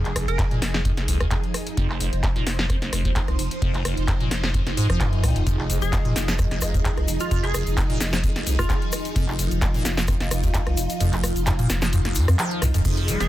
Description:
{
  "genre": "acid house",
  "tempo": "130 BPM",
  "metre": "4/4",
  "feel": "swing 53% on 16ths",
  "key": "F minor",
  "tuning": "A4 = 442 Hz",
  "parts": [
    { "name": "string machine, full ensemble", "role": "sustained chords", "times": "0.0-13.3 s", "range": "F3 to C5", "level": "-30 LUFS", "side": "right 1 dB", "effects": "phaser, ensemble chorus, vintage 12-bit sampler grit, sidechain pumping" },
    { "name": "liquid acid bass", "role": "riff", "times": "0.0-13.3 s", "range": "F1 to Ab3", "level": "-25 LUFS", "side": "equal", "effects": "phaser, tube saturation, lush chorus, sidechain pumping, tape echo" },
    { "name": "saturated sub bass", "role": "bass", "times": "0.0-13.3 s", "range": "Eb1 to F2", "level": "-26 LUFS", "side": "equal", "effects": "sidechain pumping" },
    { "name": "electro analog drum machine", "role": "drums", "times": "0.1-13.3 s", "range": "crash cymbal, handclaps, hi-hat, rim click, snare drum", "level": "-28 LUFS", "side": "equal", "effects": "none" },
    { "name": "glassy wavetable pluck", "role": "melody", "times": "0.3-0.7, 5.8-9.2, 13.2-13.3 s", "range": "F4 to Bb4", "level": "-32 LUFS", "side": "right 2 dB", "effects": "chorus, tape echo" },
    { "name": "electronic kick drum", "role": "drums", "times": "0.4-12.9 s", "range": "none", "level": "-25 LUFS", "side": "equal", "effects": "none" },
    { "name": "egg shaker", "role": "percussion", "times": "5.5-13.3 s", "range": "none", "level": "-34 LUFS", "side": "left 4 dB", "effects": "none" }
  ],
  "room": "little or no reverb",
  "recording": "dense, heavily limited modern master",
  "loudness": "-20 LUFS",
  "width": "side -14 dB against mid",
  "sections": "0.0-12.9 A section",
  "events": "drop 0.0-12.9; kick drops out 11.0-12.9; band accent 12.4",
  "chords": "0.0 Fm7",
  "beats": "0.39 0.85 1.31 | 1.77 2.23 2.70 3.16 | 3.62 4.08 4.54 5.00 | 5.47 5.93 6.39 6.85 | 7.31 7.77 8.23 8.70 | 9.16 9.62 10.08 10.54 | 11.00 11.47 11.93 12.39 | 12.85"
}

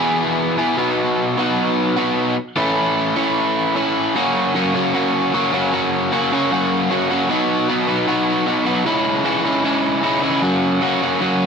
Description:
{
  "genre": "rock",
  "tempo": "153 BPM",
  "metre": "4/4",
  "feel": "straight",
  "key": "unclear",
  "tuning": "A4 = 439 Hz",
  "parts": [
    { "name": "overdriven electric guitar", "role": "solo", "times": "0.0-11.5 s", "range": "E2 to G#4", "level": "-16 LUFS", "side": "equal", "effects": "none" }
  ],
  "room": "moderate studio reverb, RT60 0.5 s",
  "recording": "band playing live in one room",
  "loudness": "-16 LUFS",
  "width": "side -6 dB against mid",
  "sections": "0.0-4.2 A section; 4.2-11.5 B section",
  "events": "none",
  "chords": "0.0 E; 0.8 B; 2.6 A; 4.2 F#; 7.3 B; 8.9 C#m; 10.4 F#",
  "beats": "0.19 0.58 | 0.98 1.38 1.78 2.17 | 2.57 2.97 3.36 3.76 | 4.15 4.55 4.94 5.33 | 5.73 6.12 6.51 6.90 | 7.29 7.68 8.08 8.47 | 8.86 9.25 9.64 10.03 | 10.43 10.82 11.21"
}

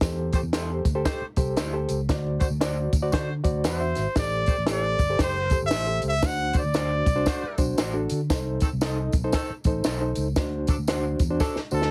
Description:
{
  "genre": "uptempo 1960s-style soul",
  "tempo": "116 BPM",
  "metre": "4/4",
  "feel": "swing 61% on 8ths",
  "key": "unclear",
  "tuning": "A4 = 441 Hz",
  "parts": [
    { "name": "reed electric piano", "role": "accompaniment", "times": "0.0-11.9 s", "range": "A2 to E5", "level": "-32 LUFS", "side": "equal", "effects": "fast tremolo" },
    { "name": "fingered electric bass", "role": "bass", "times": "0.0-11.9 s", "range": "F#1 to D3", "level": "-31 LUFS", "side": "equal", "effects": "none" },
    { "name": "compact cocktail drum kit", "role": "drums", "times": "0.0-11.9 s", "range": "hi-hat, kick drum, snare drum", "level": "-28 LUFS", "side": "equal", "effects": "none" },
    { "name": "tambourine", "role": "percussion", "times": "0.0-11.8 s", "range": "none", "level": "-44 LUFS", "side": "equal", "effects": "none" },
    { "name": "bright saxophone section", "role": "second line", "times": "0.3-11.6 s", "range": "Eb3 to C5", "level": "-35 LUFS", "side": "equal", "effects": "none" },
    { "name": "electric guitar through a small old amp", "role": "stabs", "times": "0.5-11.0 s", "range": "D4 to C5", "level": "-36 LUFS", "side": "equal", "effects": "none" },
    { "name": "bright trumpet", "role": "melody", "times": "3.7-7.6, 11.7-11.9 s", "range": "A4 to F#5", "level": "-29 LUFS", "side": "equal", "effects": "none" }
  ],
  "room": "light reverb",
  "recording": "heavily compressed radio sound",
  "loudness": "-25 LUFS",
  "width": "mono",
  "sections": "0.0-11.9 A section",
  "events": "drum fill 11.4-11.9",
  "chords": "0.0 Am7; 2.1 D7; 4.2 Am7; 6.2 D7; 8.3 Cm6; 10.4 D7",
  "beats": "| 0.02 0.54 1.06 1.57 | 2.09 2.61 3.13 3.65 | 4.16 4.68 5.20 5.71 | 6.23 6.75 7.26 7.78 | 8.30 8.81 9.33 9.85 | 10.37 10.88 11.40"
}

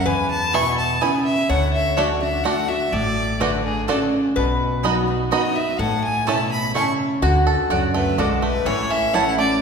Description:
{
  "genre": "bluegrass",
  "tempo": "126 BPM",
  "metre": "3/4",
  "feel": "straight",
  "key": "unclear",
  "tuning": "A4 = 440 Hz",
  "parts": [
    { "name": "clear fiddle", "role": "melody", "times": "0.0-9.6 s", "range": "G#4 to C#6", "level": "-23 LUFS", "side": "equal", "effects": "none" },
    { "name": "lap resonator guitar", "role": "second line", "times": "0.0-9.6 s", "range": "E4 to C#5", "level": "-27 LUFS", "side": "left 4 dB", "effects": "none" },
    { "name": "picked steel-string acoustic guitar", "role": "accompaniment", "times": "0.0-9.6 s", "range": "E2 to F#4", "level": "-23 LUFS", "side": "equal", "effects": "none" },
    { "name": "upright bass", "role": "bass", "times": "0.1-9.6 s", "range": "A1 to E2", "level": "-26 LUFS", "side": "equal", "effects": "none" },
    { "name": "bluegrass banjo", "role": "arpeggios", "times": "0.5-9.6 s", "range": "E3 to A4", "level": "-25 LUFS", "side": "right 3 dB", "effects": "none" },
    { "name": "mandolin", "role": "stabs", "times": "0.5-9.2 s", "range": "A3 to B5", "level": "-27 LUFS", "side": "right 3 dB", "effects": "none" }
  ],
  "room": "wet scoring stage reverb, RT60 2.1 s",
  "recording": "recorded in a church or concert hall",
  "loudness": "-18 LUFS",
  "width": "side -6 dB against mid",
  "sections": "0.0-7.2 A section; 7.2-9.6 B section",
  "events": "none",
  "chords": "0.1 E; 1.5 D; 4.4 B; 5.8 A; 7.2 D; 8.7 A",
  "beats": "| 0.06 0.54 1.01 | 1.49 1.97 2.45 | 2.93 3.40 3.88 | 4.36 4.84 5.32 | 5.79 6.27 6.75 | 7.23 7.71 8.19 | 8.66 9.14"
}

